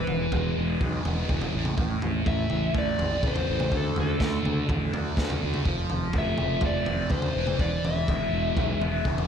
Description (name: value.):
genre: psychedelic rock.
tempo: 124 BPM.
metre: 4/4.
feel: straight.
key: E phrygian dominant.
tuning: A4 = 439 Hz.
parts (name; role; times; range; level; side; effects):
overdriven slide guitar; melody; 0.0-9.3 s; A4 to E5; -31 LUFS; left 3 dB; ping-pong delay.
thick fuzz guitar; riff; 0.0-9.3 s; A2 to D4; -29 LUFS; right 1 dB; distortion, phaser.
fuzz fingered electric bass; bass; 0.1-9.2 s; E1 to D2; -31 LUFS; equal; overdrive.
crunchy breakbeat drum kit; drums; 0.1-9.3 s; kick drum, snare drum, toms; -28 LUFS; equal; none.
room: moderate plate reverb, RT60 1.6 s, studio reverb.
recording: dreamy mix soaked in reverb.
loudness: -24 LUFS.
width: side -8 dB against mid.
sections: 0.0-9.3 A section.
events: none.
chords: 0.0 E; 1.5 Am; 3.7 D5; 5.7 F; 7.4 E.